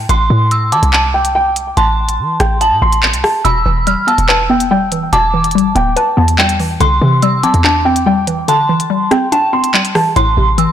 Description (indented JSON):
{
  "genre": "hip hop, drill",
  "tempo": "143 BPM",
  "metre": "4/4",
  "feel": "half-time",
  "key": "A minor",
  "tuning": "A4 = 438 Hz",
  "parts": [
    { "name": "short 808-style bass", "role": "bass", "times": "0.0-10.7 s", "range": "D1 to G3", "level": "-15 LUFS", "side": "equal", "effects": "none" },
    { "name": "dark grand piano", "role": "melody", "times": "0.1-10.7 s", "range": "G5 to C6", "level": "-15 LUFS", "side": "right 1 dB", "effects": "low-pass filter, ping-pong delay" },
    { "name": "dark detuned synth bell", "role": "second line", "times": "0.1-10.7 s", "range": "G5 to F6", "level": "-18 LUFS", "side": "right 2 dB", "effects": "chorus, ping-pong delay" },
    { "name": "drill drum kit", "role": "drums", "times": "0.1-10.7 s", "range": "handclaps, hi-hat, rim click", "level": "-16 LUFS", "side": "equal", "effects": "none" },
    { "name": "hollow square pluck", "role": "accompaniment", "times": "3.5-10.7 s", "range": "A2 to B4", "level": "-16 LUFS", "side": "left 2 dB", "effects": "chorus, low-pass filter" }
  ],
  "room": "light reverb",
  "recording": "blown-out, overdriven recording, overdrive",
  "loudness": "-10 LUFS",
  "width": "side -10 dB against mid",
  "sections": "0.0-10.2 A section",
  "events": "kick muted 8.5-10.2",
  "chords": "0.0 Am; 3.4 Em; 6.8 Cadd9; 10.2 Am"
}